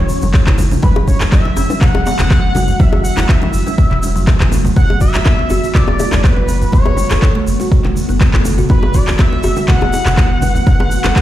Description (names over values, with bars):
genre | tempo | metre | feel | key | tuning
afro house | 122 BPM | 4/4 | straight | unclear | A4 = 437 Hz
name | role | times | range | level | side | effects
expressive synth lead | melody | 0.0-11.2 s | B4 to F#5 | -21 LUFS | left 1 dB | lush chorus, ping-pong delay
ethereal airy pad | sustained chords | 0.1-11.2 s | D3 to F#4 | -23 LUFS | right 1 dB | ensemble chorus, built-in reverb, sidechain pumping
kalimba | arpeggios | 0.0-11.2 s | C#3 to B4 | -22 LUFS | right 1 dB | sidechain pumping, ping-pong delay
warm sub bass | bass | 0.0-11.1 s | E1 to F#1 | -18 LUFS | equal | sidechain pumping
egg shaker | percussion | 0.1-11.2 s | none | -30 LUFS | right 2 dB | none
bongos | percussion | 0.2-11.1 s | none | -24 LUFS | left 4 dB | none
congas | percussion | 0.2-11.1 s | none | -22 LUFS | right 1 dB | none
electronic handclaps | drums | 0.3-11.2 s | none | -21 LUFS | equal | overdrive
electronic kick drum | drums | 0.3-11.2 s | none | -12 LUFS | equal | overdrive
room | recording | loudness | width
small room ambience | played on a big sound system in a bare room, stone room reverb | -10 LUFS | side -13 dB against mid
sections
0.0-11.2 A section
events
none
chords
0.0 F#m7; 4.8 Bm7